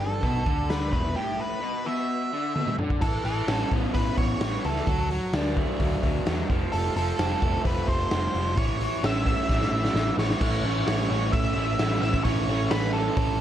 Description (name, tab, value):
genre	indie rock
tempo	130 BPM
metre	4/4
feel	straight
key	unclear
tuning	A4 = 440 Hz
part	octave-fuzz lead guitar	melody	0.0-13.4 s	G4 to E5	-30 LUFS	right 2 dB	distortion
part	raw garage guitar	riff	0.0-13.4 s	E2 to D4	-28 LUFS	equal	overdrive
part	hollow-body short-scale picked electric bass	bass	0.0-13.4 s	E1 to A2	-29 LUFS	equal	none
part	raw garage drum kit	drums	0.2-13.3 s	crash cymbal, hi-hat, kick drum, snare drum, toms	-28 LUFS	equal	none
room	light reverb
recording	dark, warm production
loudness	-23 LUFS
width	side -11 dB against mid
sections	0.0-3.0 A section; 3.0-10.4 B section; 10.4-13.4 C section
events	break 1.2-3.0; drum fill 2.6-3.0, 9.5-10.4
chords	0.0 Em; 3.0 Aadd9; 4.9 D; 6.5 F; 8.6 A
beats	0.23 0.69 | 1.16 1.62 2.09 2.56 | 3.02 3.48 3.95 4.41 | 4.88 5.34 5.80 6.27 | 6.73 7.19 7.66 8.12 | 8.58 9.04 9.50 9.96 | 10.42 10.88 11.34 11.80 | 12.26 12.71 13.17